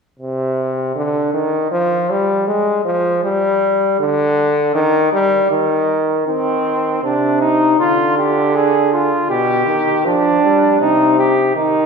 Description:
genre	classical, imitative canzona for brass ensemble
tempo	80 BPM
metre	4/4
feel	straight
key	C minor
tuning	A4 = 440 Hz
part	bright trombone	accompaniment	0.2-11.9 s	B2 to Ab3	-16 LUFS	equal	none
part	warm flugelhorn	second line	6.3-11.9 s	C4 to Ab4	-14 LUFS	right 1 dB	none
room	wet scoring stage reverb, RT60 1.9 s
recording	heard from further back in the room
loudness	-13 LUFS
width	side -5 dB against mid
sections	0.2-6.3 A section; 6.3-11.9 B section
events	none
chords	0.2 N.C.; 6.3 Cm/Eb; 7.8 Ddim; 9.3 G/B; 10.8 Cm

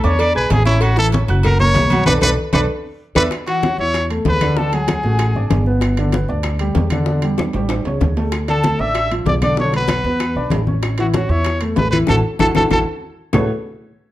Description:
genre	Afro-Cuban jazz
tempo	192 BPM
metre	4/4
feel	straight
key	A major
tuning	A4 = 443 Hz
part	warm trumpet	melody	0.0-5.7, 8.5-12.8 s	E4 to E5	-20 LUFS	equal	none
part	warm baby grand piano	accompaniment	0.0-13.5 s	D3 to G#6	-21 LUFS	equal	none
part	upright bass	bass	0.0-13.5 s	F#1 to E2	-19 LUFS	equal	none
part	agogo bells and timbales	percussion	0.0-13.4 s	none	-28 LUFS	right 4 dB	none
part	congas	percussion	0.0-13.4 s	none	-22 LUFS	left 1 dB	none
part	claves	percussion	0.2-13.4 s	none	-31 LUFS	left 3 dB	none
part	cowbell and bongos	percussion	0.2-13.4 s	none	-26 LUFS	left 5 dB	none
part	silver concert flute	second line	3.5-5.7, 8.5-12.8 s	F#5 to E6	-25 LUFS	left 3 dB	none
room	moderate large studio reverb, RT60 0.9 s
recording	dark, warm production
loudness	-14 LUFS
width	side -15 dB against mid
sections	0.0-3.3 A section; 3.3-13.3 B section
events	trumpet solo 0.0-3.3; band accent 2.1-3.3, 12.1-13.3; drum fill 2.4-3.3, 7.4-8.3, 12.4-13.3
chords	0.2 E7; 0.8 A6; 1.4 F#; 2.1 Bm7; 2.7 E5; 3.3 A69; 4.6 D; 5.8 G6; 7.1 A7sus4; 7.7 A7; 8.3 Dmadd9; 9.6 Bmadd11; 10.2 E5; 10.8 A6; 13.3 A69

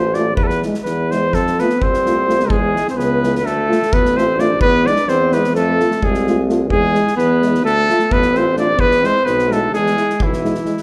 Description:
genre	balkan folk, Balkan brass band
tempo	257 BPM (eighths)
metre	9/8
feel	straight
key	E phrygian dominant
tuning	A4 = 438 Hz
part	warm trumpet	melody	0.0-10.8 s	E4 to D5	-20 LUFS	equal	none
part	warm euphonium	accompaniment	0.0-10.7 s	G#3 to A3	-28 LUFS	equal	none
part	clear tuba	bass	0.0-10.6 s	A1 to F2	-24 LUFS	equal	none
part	mellow French horn	accompaniment	0.1-10.7 s	E4 to F4	-27 LUFS	equal	none
part	loose indie drum kit	percussion	0.1-10.8 s	kick drum, snare drum	-26 LUFS	equal	none
part	mellow alto saxophone	second line	1.6-10.8 s	E3 to D4	-22 LUFS	equal	none
room	moderate recital hall reverb, RT60 1.6 s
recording	recorded in a church or concert hall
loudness	-16 LUFS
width	mono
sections	0.0-10.8 A section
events	none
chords	0.4 E; 1.3 F; 2.5 E; 3.4 Dm; 4.6 E; 5.5 F; 6.7 E; 7.6 Dm; 8.8 E

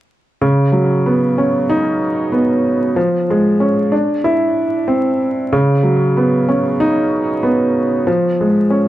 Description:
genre	hip hop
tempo	94 BPM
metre	4/4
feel	swing 60% on 16ths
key	unclear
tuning	A4 = 442 Hz
part	dark baby grand piano	solo	0.4-8.9 s	C#3 to E4	-13 LUFS	equal	cassette tape, tape echo
room	moderate studio reverb, RT60 0.5 s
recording	vinyl crackle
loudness	-13 LUFS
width	side -14 dB against mid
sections	0.4-8.9 A section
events	none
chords	0.4 C#9sus4; 3.0 Fm; 3.9 Dsus2; 5.5 C#9sus4; 8.1 Fm

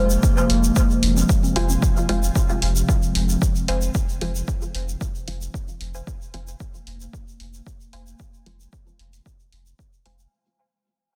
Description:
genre	dub techno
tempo	113 BPM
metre	4/4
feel	straight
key	F minor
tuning	A4 = 437 Hz
part	warbly tape-like pad	sustained chords	0.1-10.3 s	C3 to C4	-28 LUFS	equal	chorus, built-in reverb, phaser, sidechain pumping
part	filtered dub chord stab	stabs	0.0-10.2 s	F3 to F4	-30 LUFS	equal	phaser, sidechain pumping, dub echo
part	warm sub bass	bass	0.0-10.3 s	F1	-26 LUFS	equal	sidechain pumping
part	tube shaker	percussion	0.1-10.3 s	none	-34 LUFS	equal	none
part	electronic kick drum	drums	0.2-9.9 s	none	-23 LUFS	equal	none
part	electronic hi-hat	drums	0.5-10.2 s	none	-30 LUFS	equal	none
part	congas	percussion	1.2-1.8 s	none	-34 LUFS	equal	sidechain pumping on perc, dub echo
part	wavetable chord stab	riff	1.6-10.2 s	C5 to Ab5	-37 LUFS	equal	phaser, sidechain pumping, dub echo
room	light reverb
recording	dense, heavily limited modern master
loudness	-21 LUFS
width	mono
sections	0.0-10.3 A section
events	fade-out 0.0-10.3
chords	0.0 Fm

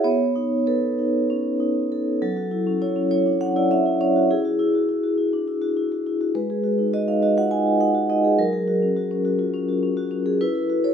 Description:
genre	classical, contemporary piece for solo vibraphone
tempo	204 BPM (eighths)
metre	7/8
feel	rubato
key	unclear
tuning	A4 = 440 Hz
part	vibraphone with soft mallets	solo	0.0-10.9 s	F#3 to G#5	-19 LUFS	equal	none
room	moderate recital hall reverb, RT60 1.5 s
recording	close, detailed microphones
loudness	-19 LUFS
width	side -7 dB against mid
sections	0.0-2.2 A section; 2.2-10.9 B section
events	none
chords	0.0 B9; 2.2 F#m7; 4.3 Eadd9; 6.3 G#m7; 8.4 F#add9; 10.4 Esus24

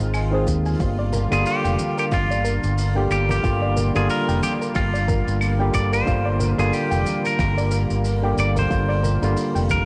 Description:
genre	sunset chillout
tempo	91 BPM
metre	4/4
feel	swing 57% on 16ths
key	G phrygian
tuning	A4 = 441 Hz
part	tine electric piano	accompaniment	0.0-9.9 s	D3 to Ab4	-27 LUFS	equal	overdrive, cassette tape, analog delay
part	lush unison pad	sustained chords	0.0-9.9 s	D3 to F4	-33 LUFS	equal	chorus, cassette tape
part	modern bright fingered electric bass	bass	0.0-9.9 s	F1 to Eb2	-25 LUFS	equal	none
part	jazz brush drum kit	drums	0.0-9.8 s	claves, hi-hat, rim click, shaker	-38 LUFS	equal	cassette tape
part	soft round pluck	arpeggios	0.1-9.7 s	F4 to Ab5	-33 LUFS	equal	chorus, cassette tape, analog delay
part	electronic kick drum	drums	0.5-9.8 s	none	-28 LUFS	equal	overdrive, cassette tape
part	congas	percussion	1.1-9.8 s	none	-35 LUFS	equal	none
part	semi-hollow electric guitar	melody	1.3-9.9 s	F4 to D5	-28 LUFS	equal	spring reverb, analog delay
room	moderate studio reverb, RT60 0.6 s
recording	home recording on cassette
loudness	-21 LUFS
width	mono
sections	0.0-9.9 A section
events	none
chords	0.0 Ab6; 0.8 Gm7

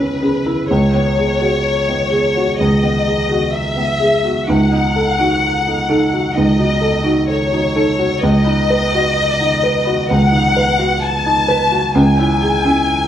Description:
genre	neoclassical piano and strings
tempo	64 BPM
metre	4/4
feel	rubato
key	unclear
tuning	A4 = 440 Hz
part	warm studio violin section	melody	0.0-13.1 s	B4 to A5	-17 LUFS	left 3 dB	none
part	felt-muted upright piano	accompaniment	0.0-13.1 s	C#2 to B4	-16 LUFS	right 1 dB	none
part	folk marimba with soft mallets	arpeggios	0.0-12.8 s	C#4 to B5	-21 LUFS	right 1 dB	none
room	wet stone room reverb, RT60 1.1 s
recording	band playing live in one room, vinyl crackle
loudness	-13 LUFS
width	side -10 dB against mid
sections	0.0-13.1 A section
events	none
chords	0.0 C#m; 0.7 G#m7/C#; 4.5 D#dim/C#; 8.2 B/C#; 11.9 C#m

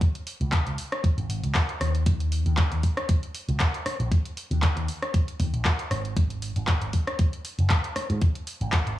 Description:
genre	nu-disco, nu disco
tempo	117 BPM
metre	4/4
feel	swing 54% on 16ths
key	unclear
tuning	A4 = 441 Hz
part	electronic kick drum	drums	0.0-8.8 s	none	-23 LUFS	equal	none
part	house drum kit	drums	0.0-9.0 s	handclaps, hi-hat, rim click	-30 LUFS	equal	overdrive
part	picked electric bass with an envelope filter	bass	0.4-9.0 s	F#1 to G#2	-26 LUFS	equal	sidechain pumping
room	little or no reverb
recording	dry, gritty hardware recording, cassette tape, small room ambience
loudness	-23 LUFS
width	side -14 dB against mid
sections	0.0-9.0 A section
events	none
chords	none

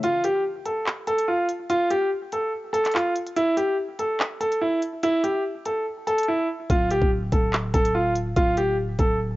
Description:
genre	hip hop, drill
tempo	144 BPM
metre	4/4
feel	half-time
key	unclear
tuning	A4 = 440 Hz
part	clear grand piano	melody	0.0-9.2 s	E4 to A4	-22 LUFS	equal	low-pass filter, analog delay
part	drill drum kit	drums	0.0-9.1 s	handclaps, hi-hat, kick drum	-25 LUFS	equal	none
part	growling 808-style bass	bass	6.7-9.4 s	D1	-27 LUFS	equal	none
room	light reverb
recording	home recording on cassette, nothing above 7.5 kHz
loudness	-21 LUFS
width	side -18 dB against mid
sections	0.0-9.4 A section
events	break 0.0-6.7; drums muted 6.3-6.7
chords	none

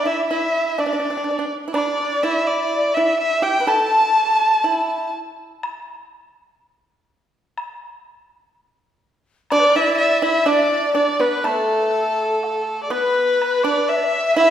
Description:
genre	chinese traditional, Chinese chamber ensemble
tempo	62 BPM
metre	2/4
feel	straight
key	A shang mode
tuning	A4 = 438 Hz
part	rich erhu	melody	0.0-5.1, 9.5-14.5 s	A4 to A5	-19 LUFS	right 1 dB	none
part	breathy large dizi	second line	0.0-5.1, 9.5-14.5 s	A4 to A5	-22 LUFS	left 3 dB	none
part	pipa	second line	0.0-5.1, 9.5-14.5 s	A3 to B4	-23 LUFS	right 3 dB	none
part	woodblock	percussion	1.8-14.5 s	none	-33 LUFS	left 2 dB	none
room	wet recital hall reverb, RT60 1.7 s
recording	heard from further back in the room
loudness	-16 LUFS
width	side -10 dB against mid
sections	0.0-13.4 A section; 13.4-14.5 B section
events	none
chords	none

